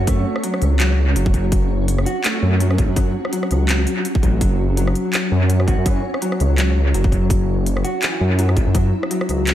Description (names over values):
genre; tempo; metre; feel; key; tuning
half-time drum and bass; 166 BPM; 4/4; swing 56% on 16ths, half-time; F# minor; A4 = 441 Hz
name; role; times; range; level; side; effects
electric guitar through a small old amp; arpeggios; 0.0-9.5 s; E3 to F#4; -23 LUFS; left 1 dB; vintage 12-bit sampler grit, low-pass filter, analog delay
dark detuned saw bass; bass; 0.0-9.5 s; F#1 to F#2; -18 LUFS; equal; none
flickering grainy texture; texture; 0.0-9.5 s; C#4 to C#5; -28 LUFS; right 1 dB; built-in reverb
drum and bass drum kit; drums; 0.1-9.5 s; handclaps, hi-hat, rim click; -25 LUFS; equal; studio reverb, analog delay
electronic kick drum; drums; 0.1-8.8 s; none; -19 LUFS; equal; studio reverb
room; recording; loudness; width
digital ambience; echo-heavy mix; -16 LUFS; side -12 dB against mid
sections
0.0-9.5 A section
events
none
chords
0.0 F#5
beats
| 0.07 0.44 0.80 1.16 | 1.52 1.88 2.24 2.60 | 2.97 3.33 3.69 4.05 | 4.41 4.77 5.13 5.50 | 5.86 6.22 6.58 6.94 | 7.30 7.67 8.03 8.39 | 8.75 9.11 9.47